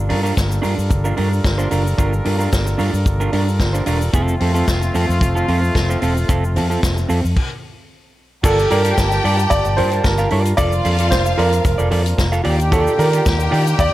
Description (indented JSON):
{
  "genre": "disco",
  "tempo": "112 BPM",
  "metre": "4/4",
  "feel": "straight",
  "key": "G minor",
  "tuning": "A4 = 439 Hz",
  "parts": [
    { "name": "clear brass ensemble", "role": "sustained chords", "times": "0.0-13.9 s", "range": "Eb3 to A5", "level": "-25 LUFS", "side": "equal", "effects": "none" },
    { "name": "fingered electric bass", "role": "bass", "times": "0.0-13.9 s", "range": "E1 to Eb3", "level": "-18 LUFS", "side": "equal", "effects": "none" },
    { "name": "electric guitar at the edge of break-up", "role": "accompaniment", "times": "0.1-13.8 s", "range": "C4 to F5", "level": "-23 LUFS", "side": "right 3 dB", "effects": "none" },
    { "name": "vintage drum kit", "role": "drums", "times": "0.1-13.9 s", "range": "crash cymbal, hi-hat, kick drum, snare drum", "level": "-21 LUFS", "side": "equal", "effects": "none" },
    { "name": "tube shaker", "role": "percussion", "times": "0.3-13.9 s", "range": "none", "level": "-36 LUFS", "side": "left 6 dB", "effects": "none" },
    { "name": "warm grand piano", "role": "melody", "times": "8.4-13.9 s", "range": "A4 to D5", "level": "-20 LUFS", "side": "right 2 dB", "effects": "none" },
    { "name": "clear studio string section", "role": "second line", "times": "8.4-13.9 s", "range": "F4 to G5", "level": "-23 LUFS", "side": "left 1 dB", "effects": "none" }
  ],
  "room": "light reverb, small room ambience",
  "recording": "faint mains hum",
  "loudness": "-15 LUFS",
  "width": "side -15 dB against mid",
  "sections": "0.0-8.4 A section; 8.4-13.9 B section",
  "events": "stop 7.4-8.4",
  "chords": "0.0 Gm7; 4.1 F; 8.4 Gm7; 10.6 Bbmaj7/F; 12.5 Ebmaj9"
}